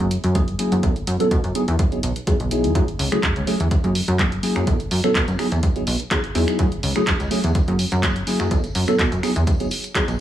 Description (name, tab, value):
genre	filtered disco house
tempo	125 BPM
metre	4/4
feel	swing 53% on 16ths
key	unclear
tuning	A4 = 440 Hz
part	tine electric piano	accompaniment	0.0-10.0 s	F#3 to A4	-23 LUFS	equal	phaser, sidechain pumping, low-pass filter
part	plucky analog bass	bass	0.0-10.2 s	F#1 to B2	-22 LUFS	equal	tube saturation, sidechain pumping, low-pass filter
part	punchy analog drum machine	drums	0.0-10.2 s	finger snaps, handclaps, hi-hat	-26 LUFS	right 1 dB	studio reverb
part	tambourine	percussion	0.1-10.2 s	none	-40 LUFS	left 3 dB	none
part	electronic kick drum	drums	0.4-10.1 s	none	-22 LUFS	equal	studio reverb
room	light reverb, digital ambience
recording	small room ambience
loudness	-18 LUFS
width	side -12 dB against mid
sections	0.0-10.2 A section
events	filter sweep 0.0-10.2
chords	0.0 F#7; 0.8 B5; 1.6 Emaj7; 2.8 F#m7; 3.7 F#7; 4.7 B5; 5.4 Emaj7; 6.6 F#m7; 7.6 F#7; 8.5 B5; 9.2 Emaj7